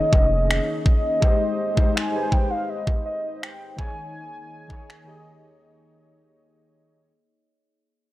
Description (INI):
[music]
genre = contemporary R&B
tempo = 82 BPM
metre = 4/4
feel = straight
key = unclear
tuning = A4 = 445 Hz
[part]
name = warm velvety synth lead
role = melody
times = 0.0-6.3 s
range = Eb5 to Ab5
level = -26 LUFS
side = equal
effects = chorus, tape echo
[part]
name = warm analog keys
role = accompaniment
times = 0.0-7.1 s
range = Eb3 to Eb5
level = -30 LUFS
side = left 2 dB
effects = chorus
[part]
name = glass harmonica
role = sustained chords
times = 0.0-7.0 s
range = Ab3 to Eb5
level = -35 LUFS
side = equal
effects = sidechain pumping
[part]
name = saturated sub bass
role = bass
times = 0.1-0.6 s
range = F1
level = -23 LUFS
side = equal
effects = none
[part]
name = trap drum kit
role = drums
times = 0.1-5.1 s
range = finger snaps, kick drum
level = -21 LUFS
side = equal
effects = none
[sound]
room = digital ambience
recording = dry, gritty hardware recording, cassette tape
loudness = -20 LUFS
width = side -16 dB against mid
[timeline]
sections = 0.0-7.1 A section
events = fade-out 0.0-7.1; break 5.6-7.1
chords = 0.0 Eb7sus4; 1.2 Abmaj7; 3.8 Eb7sus4